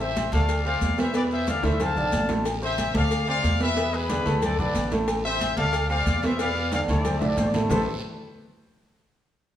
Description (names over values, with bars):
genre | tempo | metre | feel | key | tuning
latin, salsa | 183 BPM | 4/4 | straight | A minor | A4 = 441 Hz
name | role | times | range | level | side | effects
clear trumpet section | melody | 0.0-7.9 s | G#4 to A5 | -27 LUFS | left 3 dB | none
warm upright piano | accompaniment | 0.0-7.9 s | A2 to A5 | -28 LUFS | right 2 dB | none
upright bass | bass | 0.0-7.9 s | A1 to E2 | -27 LUFS | equal | none
congas | percussion | 0.0-7.8 s | none | -33 LUFS | left 1 dB | none
maracas | percussion | 0.0-7.8 s | none | -45 LUFS | left 5 dB | none
agogo bells and timbales | percussion | 0.2-7.8 s | none | -33 LUFS | right 2 dB | none
cowbell and bongos | percussion | 0.2-7.8 s | none | -35 LUFS | left 5 dB | none
guiro | percussion | 0.2-7.8 s | none | -41 LUFS | right 4 dB | none
room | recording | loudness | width
moderate recital hall reverb, RT60 1.3 s | small room ambience | -22 LUFS | side -11 dB against mid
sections
0.0-2.5 A section; 2.5-7.7 B section; 7.7-9.0 C section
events
drum fill 1.6-2.5, 6.7-7.7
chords
0.5 Dm7; 2.5 Amadd11; 3.1 Dm7; 3.8 E7; 4.4 D5; 5.1 Amadd11; 5.7 Dm7; 6.4 E5; 7.0 D5; 7.7 Am9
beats
0.16 0.49 0.82 | 1.15 1.47 1.80 2.13 | 2.46 2.79 3.11 3.44 | 3.77 4.10 4.42 4.75 | 5.08 5.41 5.74 6.06 | 6.39 6.72 7.05 7.38 | 7.70